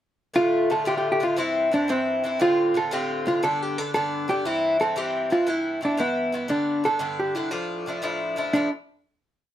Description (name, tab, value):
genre	celtic folk, Celtic jig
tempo	117 BPM (dotted quarters)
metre	6/8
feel	straight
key	D dorian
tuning	A4 = 438 Hz
part	Irish bouzouki	accompaniment	0.3-8.7 s	G2 to F4	-26 LUFS	left 2 dB	none
part	hollow-body jazz guitar	melody	0.4-8.7 s	B3 to A4	-23 LUFS	right 1 dB	none
room	light reverb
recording	minimal, uncompressed stereo recording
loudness	-22 LUFS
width	side -11 dB against mid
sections	0.3-8.5 A section; 8.5-9.5 final chord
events	none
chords	0.3 Dm; 1.4 C; 2.4 Dm7; 3.4 G; 4.5 C; 5.5 Em; 6.5 G; 7.5 Dmadd9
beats	| 0.35 0.86 | 1.38 1.89 | 2.41 2.92 | 3.44 3.95 | 4.46 4.97 | 5.48 5.99 | 6.50 7.01 | 7.51 8.02 | 8.53